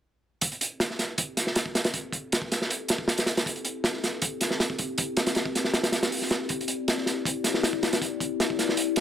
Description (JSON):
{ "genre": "drum and bass, jungle", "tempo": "158 BPM", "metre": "4/4", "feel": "straight", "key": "A minor", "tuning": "A4 = 440 Hz", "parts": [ { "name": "warbly tape-like pad", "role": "sustained chords", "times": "1.0-9.0 s", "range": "C4 to D5", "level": "-32 LUFS", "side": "left 4 dB", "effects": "chorus, built-in reverb" }, { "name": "crunchy breakbeat drum kit", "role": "drums", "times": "0.4-9.0 s", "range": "hi-hat, kick drum, snare drum", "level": "-25 LUFS", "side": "right 1 dB", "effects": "high-pass filter on kick, high-pass filter on hats, high-pass filter on snare, high-pass filter on room" } ], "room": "light reverb, small room ambience", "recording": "none", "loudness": "-25 LUFS", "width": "side -9 dB against mid", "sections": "0.4-9.0 A section", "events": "none", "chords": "0.4 Am7" }